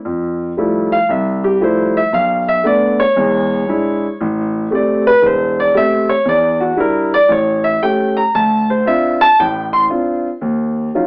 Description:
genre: solo jazz.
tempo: 116 BPM.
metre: 4/4.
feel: swing 68% on 8ths, rubato.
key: F major.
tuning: A4 = 436 Hz.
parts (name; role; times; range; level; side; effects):
warm concert grand piano; solo; 0.1-11.1 s; E1 to C6; -12 LUFS; equal; none.
room: light reverb.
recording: worn, warbling old tape, cassette tape, warbly pitch drift, AM radio sound.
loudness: -12 LUFS.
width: side -31 dB against mid.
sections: 0.1-11.1 A section.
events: grand piano solo 0.0-11.1.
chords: 0.1 Fmaj9; 2.1 Bm9b5; 3.2 E7; 4.2 Am7; 6.3 Em9b5; 7.3 A7; 8.3 Dm7; 10.4 Ebm9.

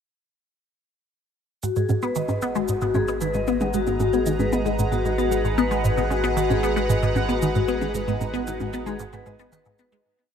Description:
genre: ambient, sequencer-driven space music.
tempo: 114 BPM.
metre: 4/4.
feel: straight.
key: G# minor.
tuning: A4 = 442 Hz.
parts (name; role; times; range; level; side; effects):
phased analog pad; sustained chords; 1.6-10.1 s; G#3 to A#5; -30 LUFS; right 1 dB; phaser, chorus.
vibraphone with medium mallets; arpeggios; 1.6-10.0 s; F#4 to F#5; -26 LUFS; moving between left 6 dB and equal; auto-pan, low-pass filter, tape echo.
resonant blip pluck; riff; 1.6-10.0 s; G#2 to B3; -24 LUFS; equal; phaser, wide subtle chorus, tape echo.
round analog bass; bass; 1.6-10.0 s; G#1; -30 LUFS; right 1 dB; none.
shaker and bongos; percussion; 1.6-10.0 s; none; -35 LUFS; right 4 dB; tape echo.
bubbling stepped-filter texture; texture; 3.0-10.1 s; D#4 to D#5; -40 LUFS; right 2 dB; none.
room: moderate huge ambient reverb, RT60 8.6 s.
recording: dreamy mix soaked in reverb.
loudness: -21 LUFS.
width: side -8 dB against mid.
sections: 1.6-10.1 A section.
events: fade-in on analog synth pad 1.6-10.1; fade-out 7.2-10.1.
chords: 1.6 G#m7.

